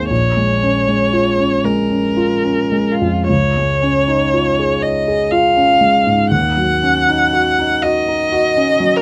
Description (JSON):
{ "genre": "classical, impressionist duo for viola and grand piano", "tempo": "51-62 BPM", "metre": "3/4", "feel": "rubato", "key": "unclear", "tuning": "A4 = 440 Hz", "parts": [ { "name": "warm viola", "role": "melody", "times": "0.0-9.0 s", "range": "F4 to Gb5", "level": "-18 LUFS", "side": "equal", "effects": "none" }, { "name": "dark concert grand piano", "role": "accompaniment", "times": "0.0-9.0 s", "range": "Bb1 to Db5", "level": "-18 LUFS", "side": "equal", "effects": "none" } ], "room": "little or no reverb", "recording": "close, detailed microphones", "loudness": "-15 LUFS", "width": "mono", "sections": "0.0-9.0 A section", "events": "none", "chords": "0.1 Bbm7; 3.3 Dbadd9; 6.3 Ebm7" }